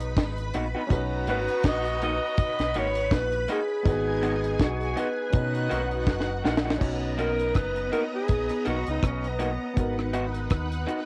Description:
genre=lovers rock reggae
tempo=81 BPM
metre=4/4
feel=swing 56% on 16ths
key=B major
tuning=A4 = 441 Hz
part: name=bright saxophone section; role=second line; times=0.0-6.4 s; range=D#3 to F#4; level=-38 LUFS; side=equal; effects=cassette tape
part: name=string machine, violins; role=second line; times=0.0-11.1 s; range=B3 to B5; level=-37 LUFS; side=equal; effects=ensemble chorus, cassette tape
part: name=warm concert grand piano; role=accompaniment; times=0.0-11.1 s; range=B3 to B4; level=-38 LUFS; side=equal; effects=cassette tape
part: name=deep dub fingered electric bass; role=bass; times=0.0-10.8 s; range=F#1 to B2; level=-34 LUFS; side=equal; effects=none
part: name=deep reggae drum kit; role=drums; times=0.0-11.1 s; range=crash cymbal, hi-hat, kick drum, rim click, snare drum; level=-28 LUFS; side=equal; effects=cassette tape
part: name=electric guitar through a small old amp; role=stabs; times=0.5-11.0 s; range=A#3 to F#4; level=-35 LUFS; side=equal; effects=cassette tape
part: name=breathy alto saxophone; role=melody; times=1.3-10.4 s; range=B3 to D#5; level=-31 LUFS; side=equal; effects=cassette tape
room=light reverb, studio reverb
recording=home recording on cassette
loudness=-27 LUFS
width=mono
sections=0.0-6.8 A section; 6.8-11.1 B section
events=drum fill 6.1-6.8; alto saxophone solo 6.8-11.1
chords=0.0 G#m7; 0.9 Bmaj7; 3.9 G#m7; 5.3 Bmaj7; 9.8 G#m7

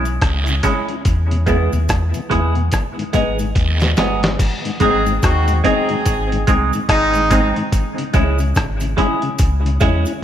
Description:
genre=roots reggae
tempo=72 BPM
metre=4/4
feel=swing 61% on 16ths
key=unclear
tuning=A4 = 440 Hz
part: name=semi-hollow electric guitar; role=accompaniment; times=0.0-10.0 s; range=G#3 to G#4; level=-21 LUFS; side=right 3 dB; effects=phaser, tape echo
part: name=warm sub bass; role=bass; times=0.0-10.1 s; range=G1 to E2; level=-19 LUFS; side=equal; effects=none
part: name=dusty soul sampler-style drum kit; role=drums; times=0.1-10.2 s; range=crash cymbal, hi-hat, kick drum, rim click, snare drum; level=-19 LUFS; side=equal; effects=none
part: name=cabasa and guiro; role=percussion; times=0.1-10.2 s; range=none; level=-30 LUFS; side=right 3 dB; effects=none
part: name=mellow tonewheel organ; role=accompaniment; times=0.5-10.1 s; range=E2 to E4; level=-25 LUFS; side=left 3 dB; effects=chorus vibrato, slow rotary speaker, tape echo
part: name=clear horn section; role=second line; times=4.8-7.5 s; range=G#3 to G#4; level=-19 LUFS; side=left 1 dB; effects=tape echo
room=moderate concert hall reverb, RT60 2.3 s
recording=none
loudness=-14 LUFS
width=side -10 dB against mid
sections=0.0-4.4 A section; 4.4-10.2 B section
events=drum fill 3.6-4.4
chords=0.0 C#m; 1.1 E; 2.7 G#m; 4.4 G#; 7.7 C#m

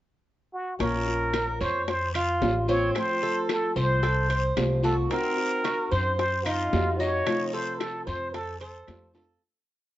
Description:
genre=latin, Cuban son and guajira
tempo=111 BPM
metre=4/4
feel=straight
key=Bb harmonic minor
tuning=A4 = 440 Hz
part: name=trumpet with plunger mute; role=melody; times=0.5-9.1 s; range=F4 to Db5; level=-28 LUFS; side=equal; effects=plate reverb
part: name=nylon-string guitar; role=accompaniment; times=0.8-9.4 s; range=C3 to Gb4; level=-31 LUFS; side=left 1 dB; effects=none
part: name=Cuban tres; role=arpeggios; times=0.8-9.4 s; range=C4 to Db5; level=-32 LUFS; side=right 2 dB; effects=none
part: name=upright bass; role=bass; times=0.8-9.4 s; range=A1 to Gb2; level=-29 LUFS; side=equal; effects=none
part: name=bongos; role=percussion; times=0.8-9.4 s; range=none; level=-35 LUFS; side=left 8 dB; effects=none
part: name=guiro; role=percussion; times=0.8-9.4 s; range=none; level=-43 LUFS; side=left 3 dB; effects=none
part: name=timbales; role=percussion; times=0.8-9.3 s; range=none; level=-35 LUFS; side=right 3 dB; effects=none
part: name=claves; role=percussion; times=1.3-9.1 s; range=none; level=-42 LUFS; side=left 4 dB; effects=none
room=moderate studio reverb, RT60 0.7 s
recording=worn, warbling old tape, cassette tape, warbly pitch drift, nothing above 7.8 kHz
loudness=-24 LUFS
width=side -14 dB against mid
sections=0.0-0.8 pickup bar; 0.8-9.4 verse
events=fade-out 7.3-9.4; drum fill 9.1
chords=0.0 N.C.; 0.8 Bbm; 3.0 F; 5.1 Cdim; 7.3 F

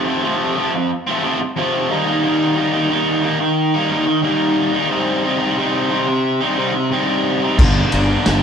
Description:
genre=classic rock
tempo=89 BPM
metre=4/4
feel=straight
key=unclear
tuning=A4 = 440 Hz
part: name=cranked stack guitar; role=riff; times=0.0-8.4 s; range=F2 to Eb4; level=-16 LUFS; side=equal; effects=overdrive, spring reverb
part: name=fuzz fingered electric bass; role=bass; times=7.6-8.4 s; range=G1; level=-18 LUFS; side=left 1 dB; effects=overdrive
part: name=vintage drum kit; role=drums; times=7.6-8.4 s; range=crash cymbal, kick drum, ride cymbal, snare drum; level=-16 LUFS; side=equal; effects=none
room=moderate stone room reverb, RT60 1.1 s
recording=band playing live in one room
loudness=-15 LUFS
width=side -7 dB against mid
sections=0.0-8.4 A section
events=none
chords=0.0 F; 1.9 Eb; 4.9 Cm; 7.6 Gm

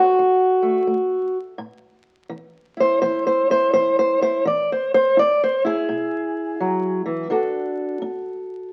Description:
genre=acoustic country blues, solo or duo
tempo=84 BPM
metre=4/4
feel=swing 65% on 8ths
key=unclear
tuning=A4 = 440 Hz
part: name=fingerpicked steel-string acoustic guitar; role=solo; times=0.0-8.7 s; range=A2 to D5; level=-20 LUFS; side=equal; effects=none
room=wet studio reverb, RT60 0.9 s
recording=very old 78 rpm record, vinyl crackle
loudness=-20 LUFS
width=mono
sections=0.0-8.7 A section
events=steel-string acoustic guitar solo 0.0-8.7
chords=0.0 D; 1.6 A5; 4.4 E; 7.3 D

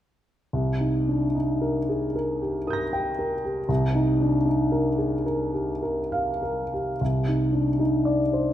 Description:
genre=classical, impressionist solo piano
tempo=47-59 BPM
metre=3/4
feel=rubato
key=C minor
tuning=A4 = 441 Hz
part: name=clear grand piano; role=solo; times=0.5-8.5 s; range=C2 to Bb6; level=-22 LUFS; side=equal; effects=none
room=wet recital hall reverb, RT60 1.5 s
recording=none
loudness=-22 LUFS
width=side -12 dB against mid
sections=0.5-7.0 A section; 7.0-8.5 B section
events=none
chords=0.5 Cm7; 3.7 Ebmaj9/C; 7.0 Cmadd9

